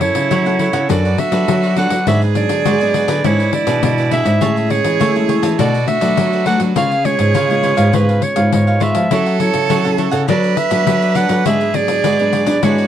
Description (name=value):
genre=samba and choro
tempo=102 BPM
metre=4/4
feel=straight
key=unclear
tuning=A4 = 440 Hz
part: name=bright clarinet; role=melody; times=0.0-12.9 s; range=B4 to F#5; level=-18 LUFS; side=right 1 dB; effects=none
part: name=clear viola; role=second line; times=0.0-12.9 s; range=E4 to B4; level=-21 LUFS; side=right 13 dB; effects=none
part: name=cavaquinho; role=accompaniment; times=0.0-12.9 s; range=D4 to A5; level=-23 LUFS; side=right 4 dB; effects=none
part: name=nylon-string guitar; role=accompaniment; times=0.0-12.9 s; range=G#2 to A4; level=-22 LUFS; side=left 5 dB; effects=none
part: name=nylon-string guitar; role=bass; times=0.0-12.9 s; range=F#2 to D4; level=-17 LUFS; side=equal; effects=none
part: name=pandeiro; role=percussion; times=0.0-12.9 s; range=none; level=-22 LUFS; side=left 12 dB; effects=none
room=light reverb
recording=dry, close 1970s-style studio recording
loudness=-12 LUFS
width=side -10 dB against mid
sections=0.0-12.9 A section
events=none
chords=0.0 F#m7; 0.9 Bm7/F#; 2.1 G#m7b5; 3.2 E7/G#; 4.4 Amaj7; 5.6 Bm7; 6.8 C#7; 9.1 F#m7; 10.3 Bm7/F#; 11.5 G#m7b5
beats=0.31 0.90 1.48 | 2.07 2.66 3.24 3.83 | 4.42 5.00 5.59 6.18 | 6.77 7.35 7.94 8.53 | 9.11 9.70 10.29 10.87 | 11.46 12.05 12.63